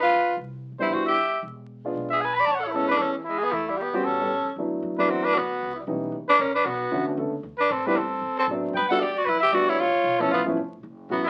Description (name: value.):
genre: jazz, small-group swing and bop.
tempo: 230 BPM.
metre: 4/4.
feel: swing 58% on 8ths.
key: A major, D major from 4.6 s.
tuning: A4 = 439 Hz.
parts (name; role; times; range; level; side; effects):
growling tenor saxophone; melody; 0.0-11.3 s; E3 to D5; -27 LUFS; equal; none.
bright trumpet; second line; 0.0-11.3 s; C#4 to B5; -28 LUFS; equal; none.
upright bass; bass; 0.0-11.3 s; E1 to A2; -46 LUFS; equal; none.
dark upright piano; accompaniment; 0.8-11.2 s; D3 to A4; -30 LUFS; equal; none.
room: moderate small room reverb, RT60 0.5 s.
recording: very old 78 rpm record, vinyl crackle, nothing above 10.7 kHz.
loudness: -24 LUFS.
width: mono.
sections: 0.0-4.6 A section; 4.6-11.3 B section.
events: none.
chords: 0.4 Cmaj7; 1.4 E7b9; 2.5 Amaj7; 3.5 Em; 4.0 A13; 4.6 D6; 5.6 C#m7b5; 6.1 F#; 6.7 Bm9; 7.7 Am7; 8.2 D6; 8.7 Gmaj9; 9.8 C#7alt.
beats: 0.12 | 0.38 0.64 0.90 1.17 | 1.43 1.69 1.95 2.21 | 2.47 2.74 3.00 3.26 | 3.52 3.78 4.04 4.30 | 4.57 4.83 5.09 5.35 | 5.61 5.87 6.13 6.40 | 6.66 6.92 7.18 7.44 | 7.70 7.96 8.22 8.49 | 8.75 9.01 9.27 9.53 | 9.79 10.05 10.31 10.58 | 10.84 11.10.